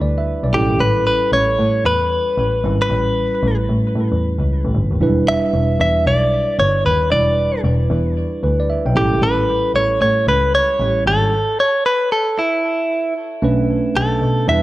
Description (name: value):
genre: R&B, new jack swing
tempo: 114 BPM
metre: 4/4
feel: swing 62% on 16ths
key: unclear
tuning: A4 = 440 Hz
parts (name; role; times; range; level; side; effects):
- tine electric piano; accompaniment; 0.0-14.6 s; F#3 to G5; -22 LUFS; right 3 dB; phaser
- muted double bass; bass; 0.0-14.6 s; E1 to B2; -18 LUFS; equal; none
- direct-recorded clean electric guitar; melody; 0.5-14.6 s; E4 to E5; -17 LUFS; equal; spring reverb, tape echo
room: light reverb, studio ambience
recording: none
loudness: -14 LUFS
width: side -16 dB against mid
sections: 0.0-13.4 A section; 13.4-14.6 B section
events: stop 11.3-13.4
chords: 0.0 Em7; 0.5 A7; 5.0 Em7; 9.0 A7; 13.4 Bm9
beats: 0.27 | 0.80 1.32 1.85 2.38 | 2.90 3.43 3.96 4.48 | 5.01 5.54 6.06 6.59 | 7.11 7.64 8.17 8.69 | 9.22 9.75 10.27 10.80 | 11.32 11.85 12.38 12.90 | 13.43 13.96 14.48